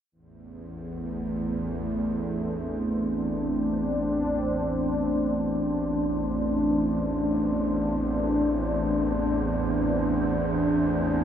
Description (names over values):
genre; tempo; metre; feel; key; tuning
dark ambient drone; free time; none; none; A minor; A4 = 440 Hz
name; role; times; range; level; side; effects
sweeping resonant pad; sustained chords; 0.1-11.2 s; A3 to D4; -26 LUFS; equal; chorus
bowed-like drone; drone; 0.4-11.2 s; A1 to E2; -29 LUFS; right 1 dB; built-in reverb
wind-like tuned noise texture; texture; 1.0-11.2 s; C5; -40 LUFS; equal; built-in reverb
room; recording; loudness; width
wet huge ambient reverb, RT60 8.1 s; none; -24 LUFS; side -9 dB against mid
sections
0.1-11.2 A section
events
fade-in on synth texture 0.1-11.2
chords
0.1 Am